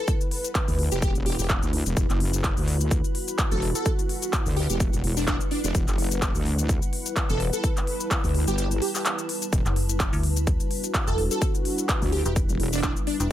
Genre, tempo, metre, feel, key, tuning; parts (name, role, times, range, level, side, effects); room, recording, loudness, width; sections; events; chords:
bass house; 127 BPM; 4/4; swing 56% on 16ths; E minor; A4 = 440 Hz
plucky unison lead; melody; 0.0-13.3 s; D4 to A4; -31 LUFS; right 1 dB; analog chorus, digital delay
sweeping resonant pad; sustained chords; 0.0-13.3 s; G3 to B4; -35 LUFS; equal; chorus, sidechain pumping
granular cloud pad; texture; 0.0-13.3 s; E4 to B5; -34 LUFS; left 1 dB; built-in reverb, sidechain pumping
big-room dance drum kit; drums; 0.1-13.3 s; handclaps, hi-hat, shaker; -30 LUFS; left 1 dB; overdrive
electronic kick drum; drums; 0.1-12.9 s; -25 LUFS; equal; overdrive
wobble bass; bass; 0.7-12.9 s; E1 to D2; -26 LUFS; equal; chorus, tube saturation, sidechain pumping
metallic FM bass; bass; 9.7-13.3 s; E1 to D2; -25 LUFS; equal; tube saturation, sidechain pumping
digital ambience; -22 LUFS; side -12 dB against mid
0.0-13.3 A section
kick drops out 8.6-9.5
0.0 Emadd9